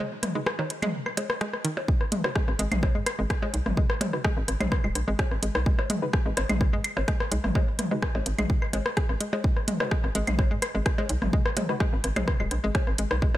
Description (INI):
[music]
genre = minimal techno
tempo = 127 BPM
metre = 4/4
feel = straight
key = G# minor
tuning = A4 = 445 Hz
[part]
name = hollow square pluck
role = riff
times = 0.0-13.3 s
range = D#3 to G#4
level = -33 LUFS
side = equal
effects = chorus, sidechain pumping, dub echo
[part]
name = house drum kit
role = drums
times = 0.2-13.1 s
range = hi-hat, rim click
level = -32 LUFS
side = equal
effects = studio reverb
[part]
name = minimal click drum kit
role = percussion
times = 0.2-13.4 s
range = claves, percussion blips, rim click, toms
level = -30 LUFS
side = left 1 dB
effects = studio reverb, ping-pong delay
[part]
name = filtered dub chord stab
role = stabs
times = 0.4-11.8 s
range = G#3 to B4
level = -36 LUFS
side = left 1 dB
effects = none
[part]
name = electronic kick drum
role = drums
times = 1.9-13.3 s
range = none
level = -25 LUFS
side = equal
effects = studio reverb
[part]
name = hollow knocking FM bass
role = bass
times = 2.5-13.3 s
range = D#1 to G#2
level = -28 LUFS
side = equal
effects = tube saturation, sidechain pumping
[sound]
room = little or no reverb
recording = none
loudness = -24 LUFS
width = side -14 dB against mid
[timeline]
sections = 0.0-13.4 A section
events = break 0.0-1.9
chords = none